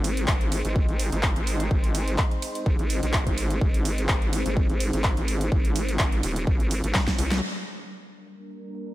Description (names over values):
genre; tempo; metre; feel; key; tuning
bass house; 126 BPM; 4/4; swing 54% on 16ths; unclear; A4 = 439 Hz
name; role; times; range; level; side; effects
sweeping resonant pad; sustained chords; 0.0-8.9 s; G3 to C5; -33 LUFS; right 1 dB; chorus, sidechain pumping
vowel-sweep wobble bass; bass; 0.0-7.4 s; Eb1 to C2; -26 LUFS; equal; chorus, overdrive, sidechain pumping
big-room dance drum kit; drums; 0.0-8.8 s; handclaps, hi-hat, ride cymbal, snare drum; -29 LUFS; equal; low-pass filter on hats, low-pass filter on cymbals, low-pass filter on snare, low-pass filter on room
electronic kick drum; drums; 0.3-7.2 s; none; -24 LUFS; equal; none
room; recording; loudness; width
digital ambience; none; -22 LUFS; side -16 dB against mid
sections
0.0-7.4 A section; 7.4-8.9 B section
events
drop 0.0-7.4; drum fill 6.9-7.4; band accent 7.3; filter sweep on drum 7.4-8.9; filter sweep on analog synth pad 7.4-8.9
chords
0.0 Ab; 7.4 Gm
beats
0.28 0.76 1.23 | 1.71 2.19 2.66 3.14 | 3.61 4.09 4.57 5.04 | 5.52 6.00 6.47 6.95 | 7.42 7.90 8.38 8.85